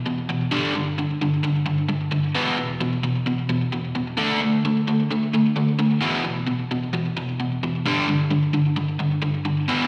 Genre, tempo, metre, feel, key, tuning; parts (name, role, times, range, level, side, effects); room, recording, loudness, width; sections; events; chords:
rock; 131 BPM; 4/4; straight; A4 = 440 Hz
overdriven electric guitar; solo; 0.0-9.9 s; E2 to D4; -23 LUFS; equal; slapback echo
light reverb, digital ambience; live gig heard through the venue's PA, recital hall reverb, nothing above 10.9 kHz; -23 LUFS; mono
0.0-9.7 A section
0.0 E5; 0.5 G5; 2.3 E5; 4.2 D5; 6.0 E5; 7.9 G5